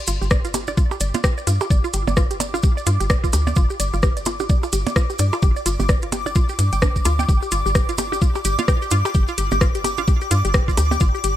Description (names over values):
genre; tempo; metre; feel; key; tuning
minimal techno; 129 BPM; 4/4; swing 60% on 16ths; unclear; A4 = 439 Hz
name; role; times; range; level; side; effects
resonant blip pluck; riff; 0.0-11.3 s; D4 to G5; -27 LUFS; left 2 dB; chorus, sidechain pumping, digital delay
granular cloud pad; texture; 0.0-11.4 s; D6; -28 LUFS; left 1 dB; built-in reverb, sidechain pumping
hollow knocking FM bass; bass; 0.1-11.4 s; G1 to G2; -22 LUFS; equal; tube saturation, sidechain pumping
garage drum kit; drums; 0.1-11.3 s; hi-hat, rim click; -24 LUFS; equal; none
maracas; percussion; 0.1-11.4 s; none; -32 LUFS; right 4 dB; none
electronic kick drum; drums; 0.3-11.1 s; none; -18 LUFS; equal; none
percussion blips; percussion; 0.5-11.0 s; none; -27 LUFS; right 7 dB; ping-pong delay
room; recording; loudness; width
little or no reverb; none; -17 LUFS; side -12 dB against mid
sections
0.0-11.4 A section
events
none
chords
0.0 G5